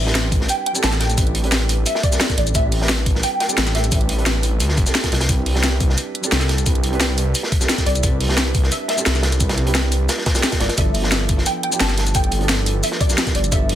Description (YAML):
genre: liquid drum and bass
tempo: 175 BPM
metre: 4/4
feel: straight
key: A minor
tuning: A4 = 439 Hz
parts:
  - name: soft round pluck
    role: melody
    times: 0.0-4.2, 7.9-13.8 s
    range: D5 to A5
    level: -25 LUFS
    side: equal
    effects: ensemble chorus, ping-pong delay
  - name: felt-muted upright piano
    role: accompaniment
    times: 0.0-13.8 s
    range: F3 to B4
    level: -26 LUFS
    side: right 4 dB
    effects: ping-pong delay
  - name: swelling detuned saw bass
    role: bass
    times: 0.0-13.8 s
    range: E1 to D2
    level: -20 LUFS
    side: equal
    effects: none
  - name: crunchy breakbeat drum kit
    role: drums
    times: 0.1-13.8 s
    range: hi-hat, snare drum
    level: -25 LUFS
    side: equal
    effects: high-pass filter on hats, high-pass filter on snare, high-pass filter on room
  - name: garage drum kit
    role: drums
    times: 0.1-13.8 s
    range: hi-hat, shaker, snare drum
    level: -21 LUFS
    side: left 1 dB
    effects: overdrive
  - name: electronic kick drum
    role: drums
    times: 0.3-13.6 s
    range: none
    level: -20 LUFS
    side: equal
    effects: none
room: studio reverb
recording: dense, heavily limited modern master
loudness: -16 LUFS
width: side -11 dB against mid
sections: 0.0-13.8 A section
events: none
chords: 0.0 Am11; 5.1 Cmaj9; 10.6 G13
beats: 0.15 0.49 0.83 | 1.18 1.52 1.86 2.21 | 2.55 2.89 3.23 3.58 | 3.92 4.26 4.61 4.95 | 5.29 5.63 5.98 6.32 | 6.66 7.01 7.35 7.69 | 8.04 8.38 8.72 9.06 | 9.41 9.75 10.09 10.44 | 10.78 11.12 11.46 11.81 | 12.15 12.49 12.84 13.18 | 13.52